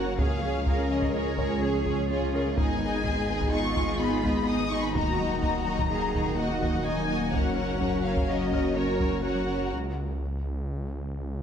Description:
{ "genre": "cinematic, hybrid orchestral and electronic film score", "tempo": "126 BPM", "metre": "5/4", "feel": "straight", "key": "unclear", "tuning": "A4 = 440 Hz", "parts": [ { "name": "warm symphonic violin section", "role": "melody", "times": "0.0-9.7 s", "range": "C#5 to D#6", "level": "-33 LUFS", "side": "left 4 dB", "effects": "none" }, { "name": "warm symphonic violin section", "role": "second line", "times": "0.0-9.7 s", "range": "F#4 to D#5", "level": "-35 LUFS", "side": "left 3 dB", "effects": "none" }, { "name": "warm symphonic viola section", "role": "accompaniment", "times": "0.0-9.7 s", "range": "A#3 to G#4", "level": "-33 LUFS", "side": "right 2 dB", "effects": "none" }, { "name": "clear French horn section", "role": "sustained chords", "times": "0.0-9.7 s", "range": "D#3 to C#4", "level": "-34 LUFS", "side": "left 4 dB", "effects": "none" }, { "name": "hollow soft pad", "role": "sustained chords", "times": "0.0-9.7 s", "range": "F#3 to D#5", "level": "-34 LUFS", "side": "equal", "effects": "chorus" }, { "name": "rich symphonic cello section", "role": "bass", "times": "0.0-9.7 s", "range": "C#4 to A#4", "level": "-35 LUFS", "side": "right 4 dB", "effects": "none" }, { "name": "swelling detuned saw bass", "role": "bass", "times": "0.0-11.4 s", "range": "D#1 to C#2", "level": "-33 LUFS", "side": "equal", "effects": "none" }, { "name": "felt-muted upright piano", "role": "texture", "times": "0.0-9.7 s", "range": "D#4 to E#6", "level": "-42 LUFS", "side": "left 1 dB", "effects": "none" }, { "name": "thumb-piano-like synth pluck", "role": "arpeggios", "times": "0.1-9.7 s", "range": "C#3 to G#4", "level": "-37 LUFS", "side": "right 3 dB", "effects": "none" }, { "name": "taiko ensemble", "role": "drums", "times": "0.2-9.4 s", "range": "none", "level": "-31 LUFS", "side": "equal", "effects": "none" } ], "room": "wet scoring stage reverb, RT60 1.6 s", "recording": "dark, warm production", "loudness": "-25 LUFS", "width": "side -8 dB against mid", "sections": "0.0-11.4 A section", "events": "break 9.7-11.4", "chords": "0.2 C#; 2.6 G#m; 5.0 D#m; 7.3 F#; 9.7 N.C." }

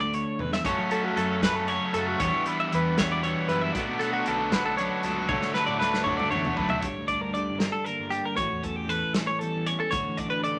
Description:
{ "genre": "math rock and midwest emo", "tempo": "78 BPM (dotted quarters)", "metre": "6/8", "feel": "straight", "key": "D major", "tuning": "A4 = 440 Hz", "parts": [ { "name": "twelve-string electric guitar", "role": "accompaniment", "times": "0.0-10.6 s", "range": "D2 to A4", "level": "-34 LUFS", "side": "equal", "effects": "none" }, { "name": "twelve-string electric guitar", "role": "arpeggios", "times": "0.0-10.6 s", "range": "F#4 to E5", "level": "-30 LUFS", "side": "equal", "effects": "none" }, { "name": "fuzz fingered electric bass", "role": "bass", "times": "0.0-10.6 s", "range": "G1 to F#3", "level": "-40 LUFS", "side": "equal", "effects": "overdrive" }, { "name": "loose indie drum kit", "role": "drums", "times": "0.1-10.6 s", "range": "hi-hat, kick drum, snare drum, toms", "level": "-34 LUFS", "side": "equal", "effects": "none" }, { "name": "overdriven electric guitar", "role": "riff", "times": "0.6-6.8 s", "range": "B2 to E4", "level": "-32 LUFS", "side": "equal", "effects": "none" } ], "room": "wet studio reverb, RT60 0.6 s", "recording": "none", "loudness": "-27 LUFS", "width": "mono", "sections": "0.0-6.8 A section; 6.8-10.6 B section", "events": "drum fill 0.4, 5.3-6.8", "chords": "0.0 D; 0.7 F#m; 2.2 Em7; 3.7 Bm7; 5.3 D; 6.8 Gm; 8.4 A13; 9.9 D6" }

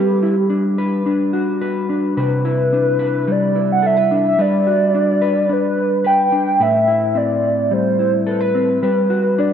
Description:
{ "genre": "dream pop", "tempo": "108 BPM", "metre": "4/4", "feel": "straight", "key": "G major", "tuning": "A4 = 439 Hz", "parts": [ { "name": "warbly nostalgic lead", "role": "melody", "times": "0.0-9.5 s", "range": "G4 to G5", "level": "-17 LUFS", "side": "right 1 dB", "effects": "chorus, dub echo" }, { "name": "mellow electric guitar", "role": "arpeggios", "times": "0.0-9.5 s", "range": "A2 to B4", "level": "-18 LUFS", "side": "left 2 dB", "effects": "analog chorus, dub echo" } ], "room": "wet spring reverb, RT60 1.9 s, digital ambience", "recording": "echo-heavy mix", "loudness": "-14 LUFS", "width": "side -8 dB against mid", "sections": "0.0-9.5 A section", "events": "none", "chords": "0.0 Gmaj7; 2.2 Cmaj9; 4.4 Gmaj7; 6.6 Am9; 8.8 Gmaj7" }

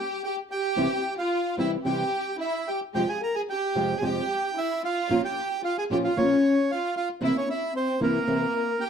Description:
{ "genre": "tango", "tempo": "112 BPM", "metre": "4/4", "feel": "rubato", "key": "unclear", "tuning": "A4 = 440 Hz", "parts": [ { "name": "bandoneon", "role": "melody", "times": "0.0-8.9 s", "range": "Bb4 to Bb5", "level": "-29 LUFS", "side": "right 3 dB", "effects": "none" }, { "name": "warm studio violin section", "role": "second line", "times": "0.0-8.9 s", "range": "Bb3 to Bb4", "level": "-28 LUFS", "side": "left 2 dB", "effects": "none" }, { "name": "flamenco guitar", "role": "accompaniment", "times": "0.8-8.4 s", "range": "F2 to G4", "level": "-26 LUFS", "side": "right 1 dB", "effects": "none" }, { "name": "dark studio string section", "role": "stabs", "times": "0.8-8.5 s", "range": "Ab3 to G4", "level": "-33 LUFS", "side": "equal", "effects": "none" } ], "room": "wet studio reverb, RT60 0.8 s", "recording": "dark, warm production", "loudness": "-24 LUFS", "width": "side -7 dB against mid", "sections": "0.0-8.9 A section", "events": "none", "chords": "0.0 N.C.; 0.8 C; 3.0 Fmadd9; 5.1 Bbm; 7.2 C7" }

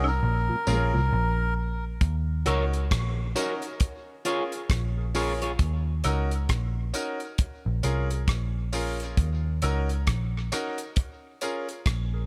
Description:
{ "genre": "dub reggae", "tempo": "67 BPM", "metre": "4/4", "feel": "swing 60% on 16ths", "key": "Bb minor", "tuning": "A4 = 440 Hz", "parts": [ { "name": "melodica", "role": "melody", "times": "0.0-1.5 s", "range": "Bb4", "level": "-32 LUFS", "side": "equal", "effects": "tape echo" }, { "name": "mellow tonewheel organ", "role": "accompaniment", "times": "0.0-1.0 s", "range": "Bb2 to Eb4", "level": "-37 LUFS", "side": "equal", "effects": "chorus vibrato, slow rotary speaker" }, { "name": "bright grand piano", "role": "stabs", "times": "0.0-12.2 s", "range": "Db4 to Bb4", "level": "-36 LUFS", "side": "equal", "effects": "tape echo" }, { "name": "vintage muted picked electric bass", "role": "bass", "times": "0.0-12.3 s", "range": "Bb1 to Eb2", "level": "-29 LUFS", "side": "equal", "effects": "none" }, { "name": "woodblock and tambourine", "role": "percussion", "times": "0.0-11.7 s", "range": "none", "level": "-38 LUFS", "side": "equal", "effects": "tape echo" }, { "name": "damped 70s drum kit", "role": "drums", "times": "2.0-12.1 s", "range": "hi-hat, kick drum, rim click", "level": "-30 LUFS", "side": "equal", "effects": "none" }, { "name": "electric guitar at the edge of break-up", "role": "accompaniment", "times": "2.5-5.5 s", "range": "F4 to Db5", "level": "-34 LUFS", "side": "equal", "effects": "spring reverb, tape echo" } ], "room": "light reverb, small room ambience", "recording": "none", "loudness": "-27 LUFS", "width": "mono", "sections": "0.0-2.0 A section; 2.0-12.3 B section", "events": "break 0.0-2.0", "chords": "0.2 Bbm7; 2.0 Ebm7; 3.8 Bbm7; 5.6 Ebm7; 7.4 Bbm7; 9.2 Ebm7; 11.0 Bbm7" }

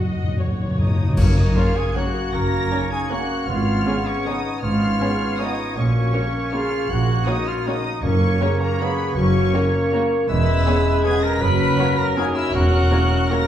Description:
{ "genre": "classical, orchestral ballroom waltz", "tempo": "158 BPM", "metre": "3/4", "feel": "uneven beats, rubato", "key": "F# major", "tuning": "A4 = 440 Hz", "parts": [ { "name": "muted symphonic violin section", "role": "melody", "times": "0.0-13.5 s", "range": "F#5 to B6", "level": "-31 LUFS", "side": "left 3 dB", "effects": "none" }, { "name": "muted symphonic violin section", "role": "second line", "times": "0.0-13.4 s", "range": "F#4 to D#5", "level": "-33 LUFS", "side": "left 4 dB", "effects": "none" }, { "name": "muted symphonic viola section", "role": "accompaniment", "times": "0.0-13.4 s", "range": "A#3 to F#4", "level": "-32 LUFS", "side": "equal", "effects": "none" }, { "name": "muted symphonic cello section", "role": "bass", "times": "0.0-12.8 s", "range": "E2 to F#3", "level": "-26 LUFS", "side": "right 1 dB", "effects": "none" }, { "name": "muted symphonic double bass section", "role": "bass", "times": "0.0-12.8 s", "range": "E1 to F#2", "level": "-23 LUFS", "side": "right 2 dB", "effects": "none" }, { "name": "timpani", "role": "percussion", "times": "0.0-1.7, 8.0-8.6 s", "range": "F#2", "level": "-23 LUFS", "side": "left 1 dB", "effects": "none" }, { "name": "large flute ensemble", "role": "second line", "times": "0.8-13.5 s", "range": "A#4 to B5", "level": "-31 LUFS", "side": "left 1 dB", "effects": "none" }, { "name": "warm trumpet", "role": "stabs", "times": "0.8-13.5 s", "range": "A#3 to B4", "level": "-28 LUFS", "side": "right 2 dB", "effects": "none" }, { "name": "clear oboe", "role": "second line", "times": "1.2-13.5 s", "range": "A#4 to C#5", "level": "-32 LUFS", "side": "right 2 dB", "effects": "none" }, { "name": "dark clarinet", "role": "second line", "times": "1.2-13.5 s", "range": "C#4", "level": "-30 LUFS", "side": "left 2 dB", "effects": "none" }, { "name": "warm bassoon", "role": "accompaniment", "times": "1.2-13.5 s", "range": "F#3 to B3", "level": "-30 LUFS", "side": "left 1 dB", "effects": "none" }, { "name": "dark French horn section", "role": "sustained chords", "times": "1.2-13.5 s", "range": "C#4 to B4", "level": "-27 LUFS", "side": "left 2 dB", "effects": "none" }, { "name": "clash cymbals and concert bass drum", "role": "percussion", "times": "1.2-1.9 s", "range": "none", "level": "-23 LUFS", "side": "left 1 dB", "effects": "none" }, { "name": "warm trombone section", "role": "sustained chords", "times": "1.6-13.4 s", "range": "C#3 to C#4", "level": "-34 LUFS", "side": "right 2 dB", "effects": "none" } ], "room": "wet recital hall reverb, RT60 1.4 s", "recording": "heard from further back in the room", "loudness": "-17 LUFS", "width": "side -10 dB against mid", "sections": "0.0-1.2 A section; 1.2-13.5 B section", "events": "timpani fill 0.0-1.2; band accent 1.2-1.6", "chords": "0.0 F#5; 1.2 F#; 3.5 C#7/G#; 5.8 F#/A#; 8.0 F#; 10.3 C#m7/E; 11.4 F#; 12.5 F#7/E" }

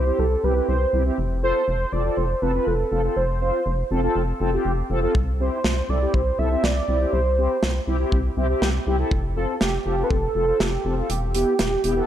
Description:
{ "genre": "synth-pop", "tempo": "121 BPM", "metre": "4/4", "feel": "straight", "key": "unclear", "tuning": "A4 = 439 Hz", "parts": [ { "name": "warm velvety synth lead", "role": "melody", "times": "0.0-12.1 s", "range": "G4 to E5", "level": "-24 LUFS", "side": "right 1 dB", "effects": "chorus, analog delay" }, { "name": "mellow synth brass", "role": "accompaniment", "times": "0.0-12.1 s", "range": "B3 to C5", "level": "-26 LUFS", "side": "left 1 dB", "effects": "chorus" }, { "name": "rubbery square bass", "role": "bass", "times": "0.0-12.0 s", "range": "E1 to C2", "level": "-24 LUFS", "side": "equal", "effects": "none" }, { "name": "modern studio drum kit", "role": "drums", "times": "5.1-12.0 s", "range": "hi-hat, kick drum, snare drum", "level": "-25 LUFS", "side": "equal", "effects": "none" } ], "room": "light reverb, studio reverb", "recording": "dark, warm production", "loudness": "-20 LUFS", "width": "side -10 dB against mid", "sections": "0.0-12.1 A section", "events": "none", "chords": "0.0 C; 1.2 F; 5.1 C; 9.1 F; 11.1 Em" }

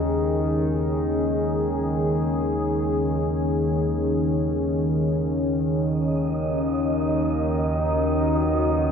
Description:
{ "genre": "dark ambient drone", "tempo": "free time", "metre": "none", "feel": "none", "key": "Eb minor", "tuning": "A4 = 440 Hz", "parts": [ { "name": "deep dark ambient pad", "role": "sustained chords", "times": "0.0-8.9 s", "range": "Eb3 to Cb5", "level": "-23 LUFS", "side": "left 1 dB", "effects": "chorus, built-in reverb" }, { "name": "analog drone", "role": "drone", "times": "0.0-8.9 s", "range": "Eb2 to Eb3", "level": "-25 LUFS", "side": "right 1 dB", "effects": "chorus" }, { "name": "wind-like tuned noise texture", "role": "texture", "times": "5.9-8.9 s", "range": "Eb5", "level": "-28 LUFS", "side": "right 4 dB", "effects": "built-in reverb" } ], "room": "wet spring reverb, RT60 2.6 s", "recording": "nothing above 7.8 kHz", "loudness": "-21 LUFS", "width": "side -7 dB against mid", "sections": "0.0-8.9 A section", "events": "none", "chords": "0.0 Eb7(no3); 5.8 Abm/Eb (rootless)" }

